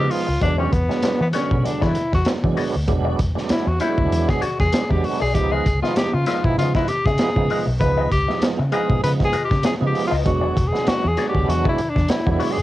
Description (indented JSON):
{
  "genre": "funk",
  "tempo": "98 BPM",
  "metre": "4/4",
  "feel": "swing 56% on 16ths",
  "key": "unclear",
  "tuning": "A4 = 441 Hz",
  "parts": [
    { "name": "breathy tenor saxophone", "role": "melody", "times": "0.0-12.6 s", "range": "B3 to Cb5", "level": "-22 LUFS", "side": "left 2 dB", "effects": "cassette tape" },
    { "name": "mellow electric guitar", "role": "accompaniment", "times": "0.0-12.6 s", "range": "F4 to Eb5", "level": "-29 LUFS", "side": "left 8 dB", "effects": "wah, cassette tape" },
    { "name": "tonewheel organ", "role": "stabs", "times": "0.0-12.6 s", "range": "D3 to Eb4", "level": "-26 LUFS", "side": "right 7 dB", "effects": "overdrive, chorus vibrato, slow rotary speaker, cassette tape" },
    { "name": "vintage muted fingered electric bass", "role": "bass", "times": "0.0-12.6 s", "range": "E1 to E3", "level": "-22 LUFS", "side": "equal", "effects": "none" },
    { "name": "crunchy breakbeat drum kit", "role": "drums", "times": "0.1-12.6 s", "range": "hi-hat, kick drum, snare drum", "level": "-22 LUFS", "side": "equal", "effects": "cassette tape" }
  ],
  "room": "light reverb",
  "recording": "home recording on cassette",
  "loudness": "-17 LUFS",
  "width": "side -15 dB against mid",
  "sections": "0.0-12.6 A section",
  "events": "tenor saxophone solo 0.0-12.6",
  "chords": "0.4 E9; 5.3 Db9; 10.3 E9",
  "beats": "| 0.42 1.03 1.65 2.27 | 2.88 3.50 4.12 4.73 | 5.34 5.96 6.57 7.19 | 7.80 8.41 9.03 9.64 | 10.26 10.87 11.48 12.10"
}